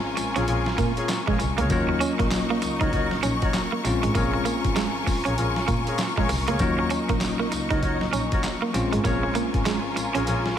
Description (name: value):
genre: R&B, new jack swing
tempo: 98 BPM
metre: 4/4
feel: swing 61% on 16ths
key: Bb minor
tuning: A4 = 440 Hz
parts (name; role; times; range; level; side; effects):
- bell-like tine electric piano; accompaniment; 0.0-10.6 s; Gb3 to F4; -29 LUFS; left 2 dB; medium stereo tremolo, slapback echo
- warm studio string section; sustained chords; 0.0-10.6 s; Eb4 to Db6; -30 LUFS; left 3 dB; none
- electric guitar at the edge of break-up; riff; 0.2-10.2 s; Ab3 to Eb4; -28 LUFS; right 5 dB; wide subtle chorus, slapback echo
- warm double bass; bass; 0.2-10.4 s; Ab1 to Bb2; -29 LUFS; equal; none
- boom bap sampler-style drum kit; drums; 0.2-10.6 s; handclaps, hi-hat, kick drum, snare drum, tambourine; -28 LUFS; equal; overdrive
- dark horn section; stabs; 0.4-10.5 s; Eb4 to Db5; -31 LUFS; left 2 dB; slapback echo
room: moderate concert hall reverb, RT60 2.5 s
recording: big arena sound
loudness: -21 LUFS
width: side -9 dB against mid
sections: 0.0-10.6 A section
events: none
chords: 0.0 Bbm7; 1.7 Ebm7; 3.8 Bbm7; 6.6 Ebm7; 8.7 Bbm7